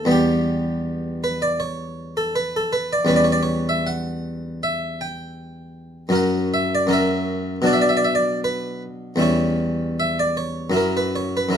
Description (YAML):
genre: classical, baroque-style suite movement for harpsichord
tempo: 79 BPM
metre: 4/4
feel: rubato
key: unclear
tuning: A4 = 441 Hz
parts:
  - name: harpsichord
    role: solo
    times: 0.0-11.6 s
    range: E2 to G5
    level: -19 LUFS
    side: equal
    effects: none
room: light reverb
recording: dark, warm production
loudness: -19 LUFS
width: side -8 dB against mid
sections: 0.0-11.6 A section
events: none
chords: 0.1 Em; 3.1 C#m7b5/E; 6.1 F#7; 7.7 Bm; 9.2 C#dim/E; 10.7 F#7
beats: | 0.10 0.84 1.59 2.34 | 3.10 3.86 4.62 5.36 | 6.13 6.89 7.65 8.41 | 9.19 9.96 10.74 11.54